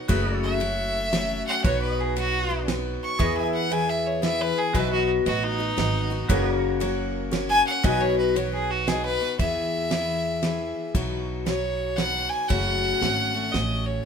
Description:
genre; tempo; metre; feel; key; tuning
honky-tonk and classic country; 116 BPM; 3/4; swing 63% on 8ths; E major; A4 = 443 Hz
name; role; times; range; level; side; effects
clear fiddle; melody; 0.0-14.0 s; D#4 to C#6; -25 LUFS; equal; none
picked steel-string acoustic guitar; accompaniment; 0.0-14.1 s; F#2 to G#4; -28 LUFS; left 7 dB; none
pedal steel guitar; sustained chords; 0.0-9.4 s; F#4 to E5; -32 LUFS; right 5 dB; none
upright bass; bass; 0.1-14.0 s; F#1 to E2; -30 LUFS; right 1 dB; none
damped 70s drum kit; drums; 0.1-13.7 s; kick drum, ride cymbal, snare drum; -29 LUFS; right 1 dB; none
dark concert grand piano; accompaniment; 3.2-9.3 s; F#4 to E5; -33 LUFS; right 4 dB; none
room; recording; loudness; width
moderate studio reverb, RT60 1.0 s; minimal, uncompressed stereo recording; -22 LUFS; side -7 dB against mid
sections
0.0-9.4 A section; 9.4-14.1 B section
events
fiddle solo 0.0-9.4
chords
0.1 F#m; 1.6 B; 3.2 E; 4.7 B; 6.3 F#; 7.8 B; 9.4 E; 10.9 B; 12.5 F#m

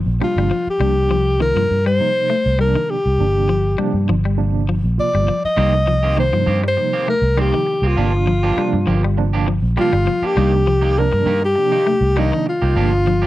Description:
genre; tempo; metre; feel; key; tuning
afrobeat; 100 BPM; 4/4; swing 53% on 16ths; C minor; A4 = 442 Hz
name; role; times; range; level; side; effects
clean electric guitar; arpeggios; 0.0-13.3 s; Eb3 to A3; -24 LUFS; left 6 dB; spring reverb
vintage muted fingered electric bass; bass; 0.0-13.3 s; G1 to G2; -18 LUFS; equal; none
breathy alto saxophone; melody; 0.2-13.3 s; Eb4 to Eb5; -18 LUFS; left 1 dB; none
tine electric piano; accompaniment; 0.2-13.1 s; C3 to F4; -24 LUFS; right 8 dB; medium tremolo
electric guitar at the edge of break-up; stabs; 5.6-13.3 s; Eb3 to G4; -25 LUFS; right 6 dB; none
room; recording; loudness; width
little or no reverb; dry, close 1970s-style studio recording; -15 LUFS; side -15 dB against mid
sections
0.0-13.3 A section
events
none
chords
0.0 Gm7; 0.8 Cm7; 3.2 Gm7; 5.6 Cm7; 8.0 Gm7; 10.4 Cm7

